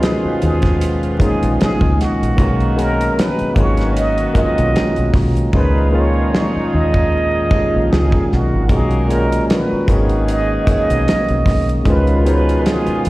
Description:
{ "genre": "R&B, neo-soul", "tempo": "76 BPM", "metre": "4/4", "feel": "swing 54% on 16ths", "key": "unclear", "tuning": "A4 = 443 Hz", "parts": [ { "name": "trumpet with plunger mute", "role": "melody", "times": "0.0-13.1 s", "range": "F#4 to D#5", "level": "-22 LUFS", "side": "right 2 dB", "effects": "none" }, { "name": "barky tine electric piano", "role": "accompaniment", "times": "0.0-13.1 s", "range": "A#2 to G#4", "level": "-18 LUFS", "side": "left 1 dB", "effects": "slapback echo" }, { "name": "hand-pumped harmonium", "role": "sustained chords", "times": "0.0-13.1 s", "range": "A#2 to E#5", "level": "-26 LUFS", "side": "right 1 dB", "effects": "none" }, { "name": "clear horn section", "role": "stabs", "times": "0.0-13.1 s", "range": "B2 to A#4", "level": "-28 LUFS", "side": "right 2 dB", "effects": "none" }, { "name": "damped 70s drum kit", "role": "drums", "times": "0.0-13.1 s", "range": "hi-hat, kick drum, snare drum", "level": "-18 LUFS", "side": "equal", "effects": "none" }, { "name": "deep dub fingered electric bass", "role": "bass", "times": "0.3-13.1 s", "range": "G#1 to D#2", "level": "-17 LUFS", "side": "equal", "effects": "none" } ], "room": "studio ambience", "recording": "live gig heard through the venue's PA, recital hall reverb, vinyl crackle", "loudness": "-13 LUFS", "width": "side -18 dB against mid", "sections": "0.0-13.1 A section", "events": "hi-hats muted 5.5-8.7", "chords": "0.0 C#13; 2.4 Bmaj7; 3.6 G#m7; 5.5 C#69; 8.7 G#m7; 11.9 C#9", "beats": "0.01 0.80 1.59 | 2.38 3.17 3.96 4.75 | 5.54 6.33 7.12 7.91 | 8.70 9.48 10.27 11.06 | 11.85 12.64" }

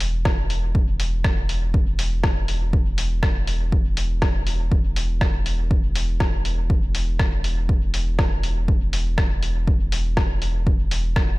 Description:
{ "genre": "dub techno", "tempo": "121 BPM", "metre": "4/4", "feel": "straight", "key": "unclear", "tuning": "A4 = 439 Hz", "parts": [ { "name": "soft dub sub bass", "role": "bass", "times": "0.0-11.4 s", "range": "E1", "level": "-23 LUFS", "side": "equal", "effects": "sidechain pumping" }, { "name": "lo-fi sampler-style drum kit", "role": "drums", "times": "0.0-11.3 s", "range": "hi-hat, rim click", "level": "-28 LUFS", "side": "left 1 dB", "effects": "small room ambience, dub echo" }, { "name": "electronic kick drum", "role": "drums", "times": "0.3-11.3 s", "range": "none", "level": "-21 LUFS", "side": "equal", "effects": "overdrive, small room ambience" } ], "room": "little or no reverb", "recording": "dark, warm production", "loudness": "-19 LUFS", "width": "side -21 dB against mid", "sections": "0.0-11.4 A section", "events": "none", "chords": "none", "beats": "0.25 | 0.75 1.24 1.74 2.24 | 2.73 3.23 3.72 4.22 | 4.72 5.21 5.71 6.20 | 6.70 7.20 7.69 8.19 | 8.68 9.18 9.67 10.17 | 10.67 11.16" }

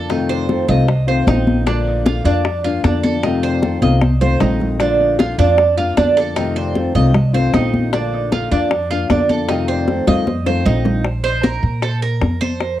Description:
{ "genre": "latin, Cuban son and guajira", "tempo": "153 BPM", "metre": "4/4", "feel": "straight", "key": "Bb major", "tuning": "A4 = 440 Hz", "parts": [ { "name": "nylon-string guitar", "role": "accompaniment", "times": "0.0-11.1 s", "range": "C3 to F4", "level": "-20 LUFS", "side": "left 5 dB", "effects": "cassette tape" }, { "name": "Cuban tres", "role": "arpeggios", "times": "0.0-12.8 s", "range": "D4 to Eb5", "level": "-20 LUFS", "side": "right 5 dB", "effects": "cassette tape, analog delay, plate reverb" }, { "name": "upright bass", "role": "bass", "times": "0.0-12.8 s", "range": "Bb1 to Bb2", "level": "-19 LUFS", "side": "equal", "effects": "none" }, { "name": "bongos", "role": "percussion", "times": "0.1-12.8 s", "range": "none", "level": "-23 LUFS", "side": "left 6 dB", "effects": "none" }, { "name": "congas", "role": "percussion", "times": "0.1-12.8 s", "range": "none", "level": "-20 LUFS", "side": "equal", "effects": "none" } ], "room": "wet small room reverb, RT60 0.5 s", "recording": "home recording on cassette", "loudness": "-14 LUFS", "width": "side -13 dB against mid", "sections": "0.0-11.1 A section; 11.1-12.8 B section", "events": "drum fill 3.6-4.8, 9.9-11.1; Cuban tres solo 11.1-12.8", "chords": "0.1 F7; 1.7 Bb; 3.2 F7; 4.8 Bb; 6.4 F7; 7.9 Bb; 9.5 F7; 11.1 Bb5", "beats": "| 0.10 0.49 0.89 1.28 | 1.67 2.06 2.45 2.84 | 3.24 3.63 4.02 4.41 | 4.80 5.19 5.58 5.98 | 6.37 6.76 7.15 7.54 | 7.93 8.32 8.71 9.10 | 9.49 9.88 10.27 10.66 | 11.05 11.44 11.83 12.22 | 12.61" }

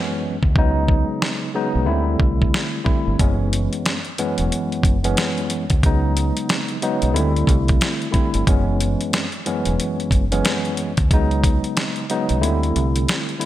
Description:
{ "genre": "hip hop, boom-bap hip-hop", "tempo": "91 BPM", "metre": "4/4", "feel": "swing 61% on 16ths", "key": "F# minor", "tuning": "A4 = 444 Hz", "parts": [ { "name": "bright tine electric piano", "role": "accompaniment", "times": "0.0-13.5 s", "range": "F#2 to E4", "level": "-22 LUFS", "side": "equal", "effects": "medium stereo tremolo, high-pass filter, low-pass filter" }, { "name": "deep dub fingered electric bass", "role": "bass", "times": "0.4-13.1 s", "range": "E1 to D2", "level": "-21 LUFS", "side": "equal", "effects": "none" }, { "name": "dusty soul sampler-style drum kit", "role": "drums", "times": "0.4-13.5 s", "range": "hi-hat, kick drum, snare drum", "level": "-20 LUFS", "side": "equal", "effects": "none" } ], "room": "moderate lush hall reverb, RT60 1.8 s", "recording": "bright 1980s-style digital production", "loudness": "-17 LUFS", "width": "side -13 dB against mid", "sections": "0.0-13.5 A section", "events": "break 0.0-3.2; kick muted 12.4-13.5", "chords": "0.0 F#9sus4; 0.6 C#9sus4; 1.9 D9sus4; 3.2 F#9sus4; 5.8 C#9sus4; 7.2 D9sus4; 8.5 F#9sus4; 11.1 C#9sus4; 12.4 D9sus4", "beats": "| 0.56 1.22 1.88 2.54 | 3.19 3.85 4.51 5.17 | 5.83 6.49 7.15 7.81 | 8.47 9.13 9.79 10.45 | 11.11 11.77 12.43 13.09" }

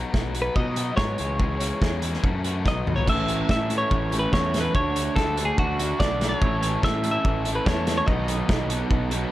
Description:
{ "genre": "indie rock", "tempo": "144 BPM", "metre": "4/4", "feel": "straight", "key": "unclear", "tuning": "A4 = 439 Hz", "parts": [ { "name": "fuzz guitar", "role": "riff", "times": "0.0-9.3 s", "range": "E3 to A4", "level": "-30 LUFS", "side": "left 5 dB", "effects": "distortion" }, { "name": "growling picked electric bass", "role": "bass", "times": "0.0-9.2 s", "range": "A1 to B2", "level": "-28 LUFS", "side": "equal", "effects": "overdrive" }, { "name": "loose indie drum kit", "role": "drums", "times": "0.1-9.2 s", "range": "crash cymbal, hi-hat, kick drum, snare drum, toms", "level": "-25 LUFS", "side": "equal", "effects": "none" }, { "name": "twelve-string electric guitar", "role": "melody", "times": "0.4-9.3 s", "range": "F#4 to E5", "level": "-27 LUFS", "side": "equal", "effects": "tape echo" }, { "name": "crunchy overdriven guitar", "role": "riff", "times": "3.1-9.3 s", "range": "A2 to A4", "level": "-30 LUFS", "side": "right 6 dB", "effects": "lush chorus" } ], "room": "light reverb, small room ambience", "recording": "none", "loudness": "-21 LUFS", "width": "side -15 dB against mid", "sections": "0.0-3.1 A section; 3.1-9.3 B section", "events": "drum fill 2.7-3.1", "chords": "0.0 B; 1.2 C#m; 2.2 F#m; 2.7 B; 3.1 A; 4.8 Dmaj7; 6.4 A; 8.1 B7", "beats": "0.15 0.57 0.99 | 1.41 1.83 2.25 2.67 | 3.08 3.50 3.92 4.34 | 4.75 5.17 5.59 6.00 | 6.42 6.83 7.25 7.67 | 8.08 8.49 8.91" }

